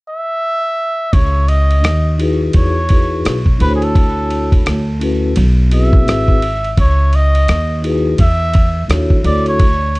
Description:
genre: hip hop, jazz-hop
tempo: 85 BPM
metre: 4/4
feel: swing 62% on 16ths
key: C# minor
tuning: A4 = 440 Hz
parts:
  - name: trumpet with cup mute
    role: melody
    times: 0.1-10.0 s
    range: G#4 to E5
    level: -19 LUFS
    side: equal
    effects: analog delay
  - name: upright bass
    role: bass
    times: 1.1-10.0 s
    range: G#1 to E2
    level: -14 LUFS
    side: equal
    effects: none
  - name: dusty soul sampler-style drum kit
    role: drums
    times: 1.1-10.0 s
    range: hi-hat, kick drum, ride cymbal, rim click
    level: -15 LUFS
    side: equal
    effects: none
  - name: vibraphone with soft mallets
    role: accompaniment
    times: 2.2-9.6 s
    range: B#3 to C#5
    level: -19 LUFS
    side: left 2 dB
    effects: none
room: little or no reverb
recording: dark, warm production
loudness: -11 LUFS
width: side -22 dB against mid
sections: 0.0-1.1 A section; 1.1-10.0 B section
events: none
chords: 0.0 N.C.; 1.1 C#m9; 2.5 Emaj7; 3.6 Dmaj9; 5.4 Bsus4; 6.1 G#7alt; 6.8 C#m9; 8.2 Dmaj9

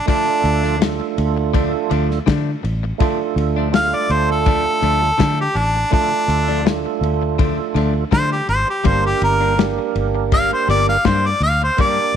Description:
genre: straight-eighth soul blues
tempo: 82 BPM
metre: 4/4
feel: swing 53% on 16ths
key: D minor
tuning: A4 = 440 Hz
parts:
  - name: clear harmonica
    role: melody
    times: 0.0-12.2 s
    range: D4 to F5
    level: -18 LUFS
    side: equal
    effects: overdrive, slapback echo
  - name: tonewheel organ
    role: accompaniment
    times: 0.1-12.2 s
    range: A3 to Bb4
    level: -22 LUFS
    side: right 14 dB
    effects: slow rotary speaker, overdrive, chorus vibrato
  - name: direct-recorded clean electric guitar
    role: stabs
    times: 0.1-12.0 s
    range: G2 to D4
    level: -26 LUFS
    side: left 11 dB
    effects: wide subtle chorus
  - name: warm soul drum kit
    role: drums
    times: 0.1-12.0 s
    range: kick drum, ride cymbal, snare drum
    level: -20 LUFS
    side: left 3 dB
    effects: none
  - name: fingered electric bass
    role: bass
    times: 0.4-12.2 s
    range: G1 to D3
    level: -20 LUFS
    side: equal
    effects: none
room: light reverb, small room ambience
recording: 1960s-style stereo with parts hard left and right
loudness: -15 LUFS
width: side -8 dB against mid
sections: 0.0-12.2 A section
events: harmonica solo 0.0-12.2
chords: 0.0 Dm; 8.9 Gm

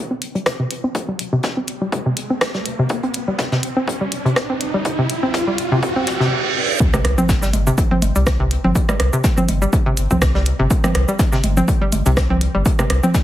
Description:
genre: minimal techno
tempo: 123 BPM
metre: 4/4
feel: swing 55% on 16ths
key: unclear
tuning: A4 = 440 Hz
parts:
  - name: riser, reverse cymbal and impact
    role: sound effects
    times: 1.1-8.8 s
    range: none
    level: -24 LUFS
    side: right 1 dB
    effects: none
  - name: hollow square pluck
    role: riff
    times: 0.1-13.1 s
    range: C3 to C4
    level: -21 LUFS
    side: equal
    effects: chorus, sidechain pumping, ping-pong delay
  - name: minimal click drum kit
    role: drums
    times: 0.2-13.2 s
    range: hi-hat, rim click, shaker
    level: -24 LUFS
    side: equal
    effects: overdrive, small room ambience
  - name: soft brush drum kit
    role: drums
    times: 0.2-13.2 s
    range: hi-hat, snare drum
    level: -31 LUFS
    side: left 2 dB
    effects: high-pass filter on hats, small room ambience, high-pass filter on snare, high-pass filter on room
  - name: electronic kick drum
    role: drums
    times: 0.5-13.2 s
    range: none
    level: -20 LUFS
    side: equal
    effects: overdrive, high-pass filter on kick, small room ambience, high-pass filter on room
  - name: booming analog drum machine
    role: percussion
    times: 6.9-13.1 s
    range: congas, rim click, toms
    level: -21 LUFS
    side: right 1 dB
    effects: small room ambience, tape echo
  - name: round analog bass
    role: bass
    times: 7.0-13.0 s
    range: G1 to C2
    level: -18 LUFS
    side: equal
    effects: sidechain pumping
room: light reverb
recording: heavily compressed radio sound, multiband compression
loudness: -16 LUFS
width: side -13 dB against mid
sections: 0.0-6.8 A section; 6.8-13.2 B section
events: build-up 0.0-6.8; filter sweep on synth arpeggio sound 0.0-6.8; riser 1.1-6.3; reverse cymbal 5.8-6.8; drop 6.8-13.2; impact 6.8-8.8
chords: 0.0 C5

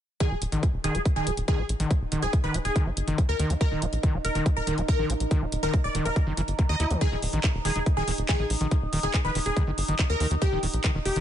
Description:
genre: psychedelic trance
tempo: 141 BPM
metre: 4/4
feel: straight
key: Eb major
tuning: A4 = 436 Hz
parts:
  - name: supersaw stab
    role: melody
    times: 0.2-11.2 s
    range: G4 to Eb5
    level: -31 LUFS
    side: left 1 dB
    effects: phaser, sidechain pumping, ping-pong delay
  - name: overtone-sweeping drone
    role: sustained chords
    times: 1.3-11.2 s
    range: Eb4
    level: -36 LUFS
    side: right 3 dB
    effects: chorus, built-in reverb, vintage 12-bit sampler grit, sidechain pumping
  - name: overdriven acid bass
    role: riff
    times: 0.2-11.2 s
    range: Eb3 to Fb4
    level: -32 LUFS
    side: equal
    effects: distortion, auto-pan, sidechain pumping, ping-pong delay
  - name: drum and bass drum kit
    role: drums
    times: 0.2-11.2 s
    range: handclaps, hi-hat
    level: -33 LUFS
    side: equal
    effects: none
  - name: electronic kick drum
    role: drums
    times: 0.2-10.9 s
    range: none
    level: -24 LUFS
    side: equal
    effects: none
  - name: tight sequencer bass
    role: bass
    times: 0.3-11.2 s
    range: Eb1 to Eb2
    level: -29 LUFS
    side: equal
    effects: tube saturation
room: little or no reverb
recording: nothing above 10.5 kHz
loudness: -23 LUFS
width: side -10 dB against mid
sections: 0.2-11.2 A section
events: none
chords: 0.2 Eb5

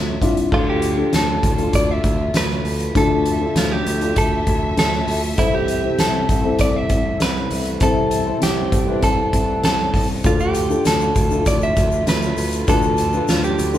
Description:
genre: piano-driven pop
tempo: 99 BPM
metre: 4/4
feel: straight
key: unclear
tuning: A4 = 438 Hz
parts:
  - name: dark upright piano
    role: accompaniment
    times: 0.0-13.8 s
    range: C3 to C5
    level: -23 LUFS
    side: left 3 dB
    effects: none
  - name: warm studio string section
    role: sustained chords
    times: 0.0-13.8 s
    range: C3 to E5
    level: -32 LUFS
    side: left 1 dB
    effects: none
  - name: picked electric bass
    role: bass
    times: 0.0-13.8 s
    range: C2 to D2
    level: -23 LUFS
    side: right 1 dB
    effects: none
  - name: soft-mallet drum kit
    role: drums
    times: 0.2-13.7 s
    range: crash cymbal, hi-hat, kick drum, snare drum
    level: -21 LUFS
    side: equal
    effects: none
  - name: direct-recorded clean electric guitar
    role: melody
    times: 0.5-13.8 s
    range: E4 to E5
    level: -22 LUFS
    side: right 1 dB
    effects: spring reverb
  - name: tube shaker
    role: percussion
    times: 10.2-13.8 s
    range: none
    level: -37 LUFS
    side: left 6 dB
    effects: none
room: moderate large studio reverb, RT60 1.2 s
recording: band playing live in one room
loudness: -16 LUFS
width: side -12 dB against mid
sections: 0.5-13.8 A section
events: none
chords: 0.0 Dmadd9; 0.5 Dm; 5.4 Am/C; 10.2 Dm

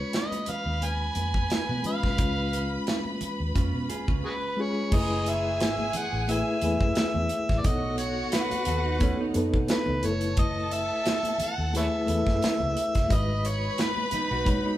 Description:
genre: lush 1970s-style soul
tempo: 88 BPM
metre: 4/4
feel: swing 54% on 16ths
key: F# dorian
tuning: A4 = 440 Hz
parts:
  - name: overdriven harmonica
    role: melody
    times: 0.0-14.8 s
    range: F#4 to G#5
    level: -30 LUFS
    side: equal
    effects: none
  - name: warm symphonic violin section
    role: second line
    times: 0.0-14.8 s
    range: F#4 to B5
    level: -35 LUFS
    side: equal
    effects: none
  - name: mellow reed electric piano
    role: accompaniment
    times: 0.0-14.8 s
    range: G#3 to C#5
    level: -31 LUFS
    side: left 1 dB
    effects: fast tremolo
  - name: vintage muted fingered electric bass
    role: bass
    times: 0.0-14.6 s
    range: F#1 to B2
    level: -31 LUFS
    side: equal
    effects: none
  - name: modern studio drum kit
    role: drums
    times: 0.1-14.6 s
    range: crash cymbal, hi-hat, kick drum, snare drum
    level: -28 LUFS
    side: equal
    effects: none
  - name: congas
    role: percussion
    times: 0.1-14.6 s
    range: none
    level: -41 LUFS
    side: right 2 dB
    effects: none
  - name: mellow electric guitar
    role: riff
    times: 3.6-10.0, 14.1-14.8 s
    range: A3 to A4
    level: -34 LUFS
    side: right 5 dB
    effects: spring reverb
room: moderate large studio reverb, RT60 1.3 s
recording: band playing live in one room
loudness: -24 LUFS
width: side -14 dB against mid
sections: 0.0-4.9 A section; 4.9-14.8 B section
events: none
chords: 0.0 C#7; 4.9 F#m11; 7.6 B9; 10.0 F#m11; 13.1 G#m7

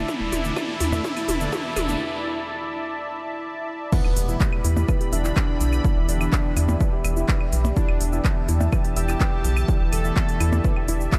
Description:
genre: melodic techno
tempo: 125 BPM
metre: 4/4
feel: straight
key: E minor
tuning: A4 = 440 Hz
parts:
  - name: sweeping resonant pad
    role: sustained chords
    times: 0.0-11.2 s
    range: E4 to B5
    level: -34 LUFS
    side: equal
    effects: chorus, sidechain pumping
  - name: analog synth brass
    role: stabs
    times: 0.0-11.0 s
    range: D3 to E4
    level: -35 LUFS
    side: equal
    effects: chorus, cassette tape, sidechain pumping, delay
  - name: tight sequencer bass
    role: bass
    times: 0.0-11.1 s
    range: E1 to E2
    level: -25 LUFS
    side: equal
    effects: sidechain pumping
  - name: analog drone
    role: drone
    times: 0.7-11.2 s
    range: E2 to D3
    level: -42 LUFS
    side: equal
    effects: none
  - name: riser and impact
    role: sound effects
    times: 0.0-5.8 s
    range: none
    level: -37 LUFS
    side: equal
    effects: none
  - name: fat analog lead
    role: melody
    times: 0.1-10.8 s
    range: B3 to A4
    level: -34 LUFS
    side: equal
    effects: chorus, cassette tape, sidechain pumping, delay
  - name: woody wave-folded pluck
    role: arpeggios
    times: 0.1-11.2 s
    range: E4 to E6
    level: -37 LUFS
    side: equal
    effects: chorus, sidechain pumping, delay
  - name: electronic kick drum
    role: drums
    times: 0.1-11.2 s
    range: none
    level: -25 LUFS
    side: equal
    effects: high-pass filter on kick, high-pass filter on room
  - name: techno drum kit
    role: drums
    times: 0.1-11.2 s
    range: claves, crash cymbal, handclaps, hi-hat, percussion blips, shaker, toms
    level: -32 LUFS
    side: equal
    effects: none
room: light reverb, digital ambience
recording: none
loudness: -23 LUFS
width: mono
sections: 0.0-3.9 A section; 3.9-11.2 B section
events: build-up 0.0-3.9; drum fill 0.0-2.0; riser 0.0-2.0; break 2.0-3.9; drop 3.9-11.2; impact 3.9-5.8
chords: 0.0 Dsus2/E; 3.9 Em7

